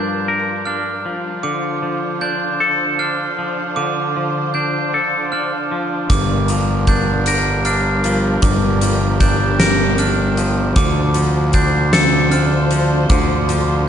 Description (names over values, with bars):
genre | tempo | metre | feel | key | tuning
post-rock | 52 BPM (dotted quarters) | 6/8 | straight | G minor | A4 = 440 Hz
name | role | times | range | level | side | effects
muted studio string section | sustained chords | 0.0-13.9 s | D3 to C5 | -25 LUFS | right 1 dB | none
glockenspiel with brass mallets | arpeggios | 0.0-13.9 s | D6 to G6 | -23 LUFS | right 7 dB | slapback echo
twangy electric guitar | arpeggios | 0.0-13.9 s | G2 to Bb4 | -20 LUFS | left 4 dB | slapback echo
fuzz fingered electric bass | bass | 6.1-13.9 s | G1 to D2 | -18 LUFS | equal | overdrive
huge arena drum kit | drums | 6.1-13.7 s | hi-hat, kick drum, snare drum | -19 LUFS | equal | none
room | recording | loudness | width
light reverb | nothing above 10.3 kHz | -15 LUFS | side -9 dB against mid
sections
0.0-13.9 A section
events
none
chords
0.0 Gm7; 1.4 Dm7; 6.1 Gm7; 10.8 Dm7